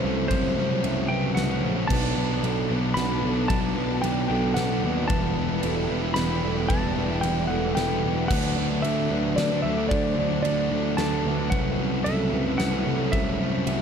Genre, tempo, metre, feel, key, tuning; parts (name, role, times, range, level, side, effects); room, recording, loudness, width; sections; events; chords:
post-rock; 112 BPM; 3/4; straight; E minor; A4 = 441 Hz
clean lap steel guitar; melody; 0.0-13.8 s; C5 to B5; -30 LUFS; equal; tape echo
vibraphone with medium mallets; arpeggios; 0.0-13.8 s; A4 to E5; -33 LUFS; right 1 dB; tape echo
sludgy distorted guitar; riff; 0.0-13.8 s; F#2 to E4; -29 LUFS; right 14 dB; overdrive
thick fuzz guitar; riff; 0.0-13.8 s; F#2 to E4; -30 LUFS; left 14 dB; distortion
fuzz picked electric bass; bass; 0.0-13.8 s; E1 to D#2; -27 LUFS; equal; overdrive
huge arena drum kit; drums; 0.3-13.8 s; crash cymbal, kick drum, ride cymbal, snare drum; -31 LUFS; equal
dark studio string section; sustained chords; 1.9-13.8 s; C4 to A5; -40 LUFS; left 1 dB
small room reverb; dark, warm production; -22 LUFS; side -7 dB against mid
0.0-13.8 A section
0.0 F#m7b5/C; 1.9 Bm7; 5.1 Em7; 8.3 D7; 11.5 F#m7b5/C